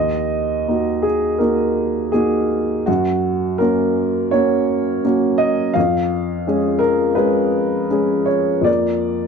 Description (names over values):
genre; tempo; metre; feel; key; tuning
neoclassical minimalist piano; 76-85 BPM; 4/4; rubato; Eb minor; A4 = 440 Hz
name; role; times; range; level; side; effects
dark upright piano; solo; 0.0-9.3 s; Eb2 to F5; -16 LUFS; equal; none
room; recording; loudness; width
light reverb; dark, warm production; -16 LUFS; side -6 dB against mid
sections
0.0-9.3 A section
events
none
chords
0.0 Ebm; 2.9 Gb; 5.8 Db/F; 8.7 Bb/F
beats
0.68 1.42 2.14 | 2.87 3.60 4.32 5.04 | 5.75 6.46 7.17 7.91 | 8.67